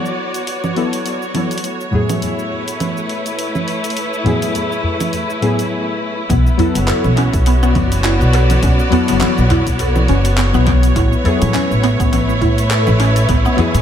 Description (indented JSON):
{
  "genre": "organic downtempo",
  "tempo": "103 BPM",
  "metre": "4/4",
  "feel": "swing 56% on 16ths",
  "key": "B dorian",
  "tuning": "A4 = 440 Hz",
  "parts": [
    { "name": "deep mellow chord stab", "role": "accompaniment", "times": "0.0-13.8 s", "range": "A2 to B4", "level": "-21 LUFS", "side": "left 3 dB", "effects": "chorus, sidechain pumping, analog delay" },
    { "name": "rich studio string section", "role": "sustained chords", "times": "0.0-13.8 s", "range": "A3 to D5", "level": "-20 LUFS", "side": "equal", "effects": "sidechain pumping, low-pass filter" },
    { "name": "deep house drum kit", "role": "drums", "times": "0.1-13.8 s", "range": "cabasa, congas, handclaps, hi-hat", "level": "-23 LUFS", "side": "right 3 dB", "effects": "analog delay" },
    { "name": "udu", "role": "percussion", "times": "1.9-13.7 s", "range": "none", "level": "-22 LUFS", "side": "left 1 dB", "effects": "analog delay" },
    { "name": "mallet-like synth pluck", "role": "arpeggios", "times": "6.3-13.8 s", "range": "B3 to A4", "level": "-19 LUFS", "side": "equal", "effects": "ensemble chorus, analog delay" },
    { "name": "upright bass", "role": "bass", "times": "6.3-13.8 s", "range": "F#1 to A2", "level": "-15 LUFS", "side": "equal", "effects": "tube saturation" },
    { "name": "electronic kick drum", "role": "drums", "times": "6.3-13.4 s", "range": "none", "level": "-18 LUFS", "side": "equal", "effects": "none" }
  ],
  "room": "moderate echo chamber reverb, RT60 2.2 s",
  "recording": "echo-heavy mix",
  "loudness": "-13 LUFS",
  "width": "side -9 dB against mid",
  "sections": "0.0-6.3 A section; 6.3-13.8 B section",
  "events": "break 5.7-6.3",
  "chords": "0.0 Bm7; 1.6 Amaj9; 6.3 Bm7; 11.0 Amaj9",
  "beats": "0.47 1.05 | 1.64 2.22 2.80 3.38 | 3.97 4.55 5.13 5.71 | 6.30 6.88 7.46 8.04 | 8.63 9.21 9.79 10.38 | 10.96 11.54 12.12 12.71 | 13.29"
}